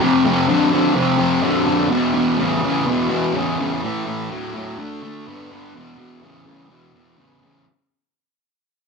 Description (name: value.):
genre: rock.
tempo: 125 BPM.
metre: 4/4.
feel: straight.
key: unclear.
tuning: A4 = 440 Hz.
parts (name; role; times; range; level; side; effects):
fuzz guitar; solo; 0.0-7.6 s; E2 to B3; -17 LUFS; left 1 dB; distortion.
room: moderate large studio reverb, RT60 1.1 s.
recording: band playing live in one room.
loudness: -16 LUFS.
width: side -4 dB against mid.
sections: 0.0-7.7 A section.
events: fade-out 0.0-7.7.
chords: 0.0 F5; 1.9 E5; 3.8 A5; 4.8 D5; 5.8 E5.